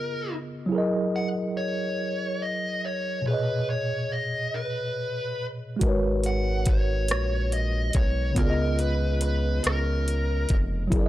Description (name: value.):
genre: slow six-eight R&B.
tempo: 47 BPM (dotted quarters).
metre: 6/8.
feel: straight.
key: unclear.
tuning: A4 = 440 Hz.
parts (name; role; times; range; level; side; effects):
dark smooth lead guitar; melody; 0.0-10.6 s; A#4 to F#5; -31 LUFS; left 1 dB; overdrive.
mellow tine electric piano; accompaniment; 0.0-11.1 s; A#2 to D#5; -28 LUFS; equal; medium stereo tremolo.
rubbery square bass; bass; 5.8-11.1 s; E#1 to C#2; -26 LUFS; equal; none.
smooth R&B drum kit; drums; 5.8-11.1 s; hi-hat, kick drum, rim click; -24 LUFS; equal; none.
room: digital ambience.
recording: dry, gritty hardware recording.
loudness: -24 LUFS.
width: side -14 dB against mid.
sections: 0.0-11.1 A section.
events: none.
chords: 0.0 C#13; 0.7 F#13; 3.3 Bmaj13; 5.8 G#m11; 8.4 C#13.